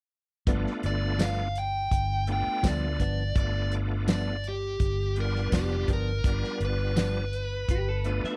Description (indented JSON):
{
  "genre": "straight-eighth soul blues",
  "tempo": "83 BPM",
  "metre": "4/4",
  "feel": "straight",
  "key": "G mixolydian",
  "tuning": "A4 = 440 Hz",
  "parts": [
    { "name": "bright tonewheel organ", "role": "accompaniment", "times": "0.5-8.4 s", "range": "G3 to F4", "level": "-36 LUFS", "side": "equal", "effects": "overdrive, chorus vibrato, fast rotary speaker" },
    { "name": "direct-recorded clean electric guitar", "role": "stabs", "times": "0.5-7.2 s", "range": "G2 to D4", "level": "-37 LUFS", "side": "equal", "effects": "spring reverb" },
    { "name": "vintage muted fingered electric bass", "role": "bass", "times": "0.5-8.3 s", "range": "F1 to D2", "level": "-32 LUFS", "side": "equal", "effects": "none" },
    { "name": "warm soul drum kit", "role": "drums", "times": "0.5-8.3 s", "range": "hi-hat, kick drum, snare drum, tambourine", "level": "-30 LUFS", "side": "equal", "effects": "none" },
    { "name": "dark smooth lead guitar", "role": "melody", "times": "0.9-8.4 s", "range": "G4 to G5", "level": "-34 LUFS", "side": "equal", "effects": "overdrive" },
    { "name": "electric guitar at the edge of break-up", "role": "second line", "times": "7.7-8.4 s", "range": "G4 to E5", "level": "-37 LUFS", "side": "equal", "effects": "none" }
  ],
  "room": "little or no reverb",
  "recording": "dry, close 1970s-style studio recording",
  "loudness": "-28 LUFS",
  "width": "mono",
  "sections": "0.5-8.4 A section",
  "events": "none",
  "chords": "0.5 G7",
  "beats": "| 0.47 1.20 1.92 2.64 | 3.36 4.08 4.80 5.52 | 6.24 6.96 7.68"
}